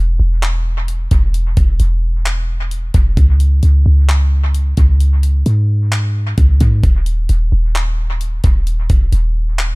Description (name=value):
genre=hip hop, atmospheric cloud-rap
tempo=131 BPM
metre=4/4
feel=half-time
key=unclear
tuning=A4 = 440 Hz
part: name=clean 808-style bass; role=bass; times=0.0-9.8 s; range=D#1 to G#2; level=-13 LUFS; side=equal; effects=none
part: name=breakbeat sampler-style drum kit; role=drums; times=0.4-9.7 s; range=handclaps, hi-hat, kick drum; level=-16 LUFS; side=equal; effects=dub echo
room=little or no reverb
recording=echo-heavy mix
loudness=-12 LUFS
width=side -28 dB against mid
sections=0.0-9.8 A section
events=none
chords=none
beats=0.42 0.88 | 1.34 1.80 2.26 2.71 | 3.17 3.63 4.09 4.55 | 5.00 5.46 5.92 6.38 | 6.84 7.29 7.75 8.21 | 8.67 9.13 9.58